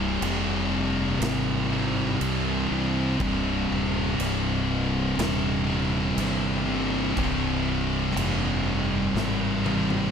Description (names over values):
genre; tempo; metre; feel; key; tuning
stoner and doom metal; 60 BPM; 4/4; straight; unclear; A4 = 440 Hz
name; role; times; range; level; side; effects
scooped high-gain guitar; riff; 0.0-10.1 s; C2 to C3; -30 LUFS; left 1 dB; distortion
thick fuzz guitar; riff; 0.0-10.1 s; C2 to C3; -28 LUFS; left 9 dB; distortion
thick fuzz guitar; riff; 0.0-10.1 s; C2 to C3; -28 LUFS; right 9 dB; distortion
fuzz fingered electric bass; bass; 0.0-10.1 s; C1 to C2; -30 LUFS; equal; overdrive, tube saturation
big rock drum kit; drums; 0.2-10.1 s; crash cymbal, kick drum, snare drum, toms; -36 LUFS; right 1 dB; none
room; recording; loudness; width
studio ambience; none; -23 LUFS; side -7 dB against mid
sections
0.0-10.1 A section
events
drum fill 9.2-10.1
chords
0.0 Cm